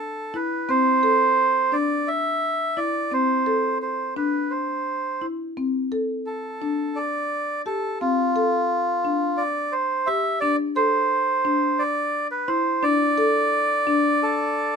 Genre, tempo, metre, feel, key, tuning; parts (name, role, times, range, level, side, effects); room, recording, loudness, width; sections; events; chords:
contemporary instrumental, chamber music in an uneven meter; 173 BPM (eighths); 7/8; straight; D dorian; A4 = 440 Hz
melodica; melody; 0.0-14.8 s; F4 to E5; -21 LUFS; right 2 dB
marimba with soft mallets; arpeggios; 0.3-14.5 s; C4 to A4; -26 LUFS; left 4 dB
light reverb; -20 LUFS; side -6 dB against mid
0.0-5.6 A section; 5.6-14.8 B section
0.0 Am; 5.6 Dm7; 10.4 Csus2/D